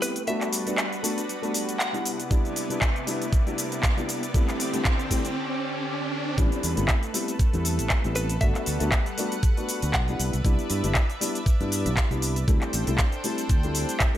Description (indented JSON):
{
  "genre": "nu-disco, nu disco",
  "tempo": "118 BPM",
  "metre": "4/4",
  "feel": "swing 55% on 16ths",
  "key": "D mixolydian",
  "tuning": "A4 = 441 Hz",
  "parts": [
    { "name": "direct-recorded clean electric guitar", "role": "melody", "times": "0.0-2.1, 8.2-10.3 s", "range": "B4 to F#5", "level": "-32 LUFS", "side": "equal", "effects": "tremolo, analog delay" },
    { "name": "dark grand piano", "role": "accompaniment", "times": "0.0-14.2 s", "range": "G3 to F#4", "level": "-30 LUFS", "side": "left 2 dB", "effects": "sidechain pumping, slapback echo" },
    { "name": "lush unison pad", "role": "sustained chords", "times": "0.0-14.2 s", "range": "C3 to G5", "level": "-33 LUFS", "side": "right 1 dB", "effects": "chorus, sidechain pumping" },
    { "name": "pop drum kit", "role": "drums", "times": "0.0-14.2 s", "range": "handclaps, hi-hat, shaker", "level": "-29 LUFS", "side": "equal", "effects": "high-pass filter on perc, small room reverb, high-pass filter on hats, high-pass filter on snare" },
    { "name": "riser", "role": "sound effects", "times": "1.2-6.4 s", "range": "none", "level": "-35 LUFS", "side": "equal", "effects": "none" },
    { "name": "electronic kick drum", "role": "drums", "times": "2.3-14.1 s", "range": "none", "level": "-23 LUFS", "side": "equal", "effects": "small room reverb" },
    { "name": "fingered electric bass", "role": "bass", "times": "6.4-13.8 s", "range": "G1 to G2", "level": "-27 LUFS", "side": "equal", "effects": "none" }
  ],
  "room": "light reverb, digital ambience",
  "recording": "none",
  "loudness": "-23 LUFS",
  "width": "side -12 dB against mid",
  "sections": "0.0-6.4 A section; 6.4-14.2 B section",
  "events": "build-up 0.0-6.4; riser 1.2-6.4; break 5.4-6.4; drop 6.4-14.2",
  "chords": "0.3 Gmaj7; 2.1 Cmaj9; 4.3 D7sus4; 6.4 Am9; 8.4 Gmaj7; 10.2 Cmaj9; 12.5 D7sus4"
}